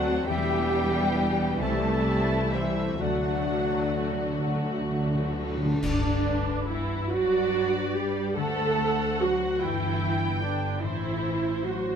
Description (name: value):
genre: classical, slow romantic movement for symphony orchestra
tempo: 42-50 BPM (dotted quarters)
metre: 6/8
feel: rubato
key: G major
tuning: A4 = 440 Hz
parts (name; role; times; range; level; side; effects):
- muted symphonic violin section; melody; 0.0-12.0 s; B4 to A5; -36 LUFS; left 2 dB; none
- dark clarinet; second line; 0.0-4.4 s; E4 to A4; -33 LUFS; equal; none
- muted studio violin section; second line; 0.0-12.0 s; G3 to G5; -34 LUFS; left 2 dB; none
- silver concert flute; second line; 0.0-4.4 s; C5 to E5; -36 LUFS; equal; none
- muted symphonic viola section; accompaniment; 0.0-12.0 s; D3 to A4; -29 LUFS; right 2 dB; none
- mellow French horn section; sustained chords; 0.0-5.4 s; F#3 to D4; -34 LUFS; left 4 dB; none
- concert harp; arpeggios; 0.0-12.0 s; G2 to C6; -34 LUFS; left 10 dB; none
- dark tuba; bass; 0.0-5.6 s; E1 to D2; -34 LUFS; right 3 dB; none
- muted chamber cello section; bass; 0.0-12.0 s; D3 to A3; -34 LUFS; right 3 dB; none
- muted symphonic double bass section; bass; 0.0-11.9 s; G1 to G2; -34 LUFS; right 3 dB; none
- cymbal swell, clash cymbals and concert bass drum; percussion; 3.0-7.5 s; none; -36 LUFS; equal; none
- timpani; percussion; 3.0-7.1 s; G2 to D3; -31 LUFS; right 2 dB; none
room: moderate recital hall reverb, RT60 1.6 s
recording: none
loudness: -24 LUFS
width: side -7 dB against mid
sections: 0.0-5.8 A section; 5.8-12.0 B section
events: timpani fill 3.0-5.8; band accent 5.8-6.7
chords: 0.3 Em; 1.6 Am7/C; 3.0 D; 5.8 G; 8.4 D7; 9.6 G; 10.8 Am